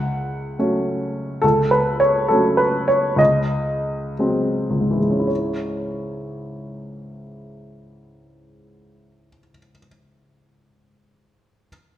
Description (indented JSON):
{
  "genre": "classical, romantic character piece for solo piano",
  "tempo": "50-72 BPM (dotted quarters)",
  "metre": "6/8",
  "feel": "rubato",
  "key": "C# minor",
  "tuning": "A4 = 440 Hz",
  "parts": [
    { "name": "warm baby grand piano", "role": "solo", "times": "0.0-11.7 s", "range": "C#2 to F#5", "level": "-18 LUFS", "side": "equal", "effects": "none" }
  ],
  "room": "wet recital hall reverb, RT60 1.5 s",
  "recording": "none",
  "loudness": "-18 LUFS",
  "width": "side -12 dB against mid",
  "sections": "0.0-5.3 A section; 5.3-9.5 B section",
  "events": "slowing down 0.6-5.3",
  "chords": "0.0 F#m/C#; 3.2 G#7/C#; 5.3 C#m",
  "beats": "0.58 | 1.43 2.29 | 3.19 4.18 | 5.30 6.34 | 7.39 8.44"
}